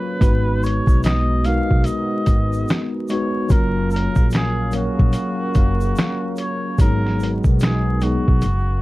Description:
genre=lo-fi hip hop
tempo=73 BPM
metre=4/4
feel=swing 62% on 16ths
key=unclear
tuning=A4 = 443 Hz
part: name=trumpet with cup mute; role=melody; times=0.0-8.8 s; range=F#4 to E#5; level=-27 LUFS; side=equal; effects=none
part: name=tine electric piano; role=accompaniment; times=0.0-8.5 s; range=F#3 to E#5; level=-23 LUFS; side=left 1 dB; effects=medium stereo tremolo
part: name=dark analog pad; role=sustained chords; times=0.0-8.8 s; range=F#3 to A#5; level=-31 LUFS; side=right 1 dB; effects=chorus
part: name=upright bass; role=bass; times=0.2-8.8 s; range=F#1 to B1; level=-21 LUFS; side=equal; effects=none
part: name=lo-fi sampler-style drum kit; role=drums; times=0.2-8.7 s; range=finger snaps, hi-hat, kick drum, snare drum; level=-17 LUFS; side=equal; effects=none
part: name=tube shaker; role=percussion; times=0.2-8.7 s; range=none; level=-46 LUFS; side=right 5 dB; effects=none
room=light reverb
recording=dark, warm production, vinyl crackle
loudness=-16 LUFS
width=side -19 dB against mid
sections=0.0-8.8 A section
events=none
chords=0.2 G#m7; 3.5 F#maj7; 6.8 G#m7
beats=| 0.21 1.03 1.85 2.68 | 3.50 4.32 5.14 5.96 | 6.79 7.61 8.43

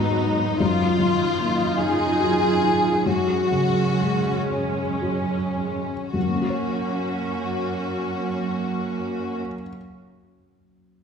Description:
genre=cinematic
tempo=34-52 BPM (dotted quarters)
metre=6/8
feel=rubato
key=F# major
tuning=A4 = 439 Hz
part: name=rich studio violin section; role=second line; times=0.0-9.4 s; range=C#4 to G#4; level=-25 LUFS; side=left 3 dB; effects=none
part: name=felt-muted upright piano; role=accompaniment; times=0.0-11.0 s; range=F#2 to C#5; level=-26 LUFS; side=left 2 dB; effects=none
part: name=rich studio viola section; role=accompaniment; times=0.0-9.4 s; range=F#3 to E#4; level=-28 LUFS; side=right 3 dB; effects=none
part: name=rich studio cello section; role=bass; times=0.0-9.4 s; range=F#2 to G#2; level=-28 LUFS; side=right 4 dB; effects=none
room=wet scoring stage reverb, RT60 1.6 s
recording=heard from further back in the room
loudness=-20 LUFS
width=side -6 dB against mid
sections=0.0-6.1 A section; 6.1-9.5 B section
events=slowing down 0.0-6.1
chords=0.0 G#m7; 0.6 D#madd9/F#; 3.1 F#sus2; 6.1 F#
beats=| 0.60 1.79 | 3.06 4.48 | 6.15 7.81

